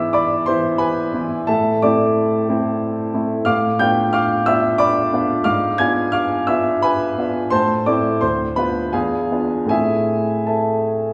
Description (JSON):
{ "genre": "classical, romantic character piece for solo piano", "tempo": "71-95 BPM", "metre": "3/4", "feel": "rubato", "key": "A minor", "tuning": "A4 = 441 Hz", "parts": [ { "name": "clear baby grand piano", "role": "solo", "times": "0.0-11.1 s", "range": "D2 to G#6", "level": "-19 LUFS", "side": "equal", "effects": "none" } ], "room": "wet recital hall reverb, RT60 1.6 s", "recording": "heard from further back in the room", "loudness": "-19 LUFS", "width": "mono", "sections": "0.0-11.1 A section", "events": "none", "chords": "0.0 E7/G#; 1.5 Am; 3.5 Bm7b5/A; 5.5 G#dim7; 7.5 Am; 8.2 Bdim/D; 8.9 E7b9; 9.7 Am", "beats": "0.14 0.79 | 1.48 2.17 2.81 | 3.47 4.14 4.80 | 5.46 6.14 6.84 | 7.53 8.22 8.94 | 9.70 10.48" }